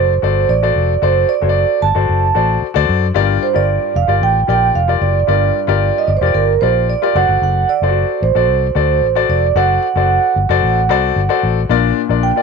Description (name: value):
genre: uptempo 1960s-style soul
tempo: 112 BPM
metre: 4/4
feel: straight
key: unclear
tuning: A4 = 440 Hz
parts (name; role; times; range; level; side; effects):
- vibraphone with soft mallets; melody; 0.0-12.4 s; Bb4 to A5; -15 LUFS; right 12 dB; none
- warm grand piano; accompaniment; 0.0-12.4 s; G2 to D5; -17 LUFS; left 15 dB; none
- vintage muted fingered electric bass; bass; 0.0-12.3 s; F1 to F#2; -16 LUFS; left 2 dB; none
room: studio reverb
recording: 1960s-style stereo with parts hard left and right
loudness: -12 LUFS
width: side -5 dB against mid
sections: 0.0-11.7 A section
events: none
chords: 0.0 D7; 3.2 Gm7; 7.2 D7; 11.7 Bb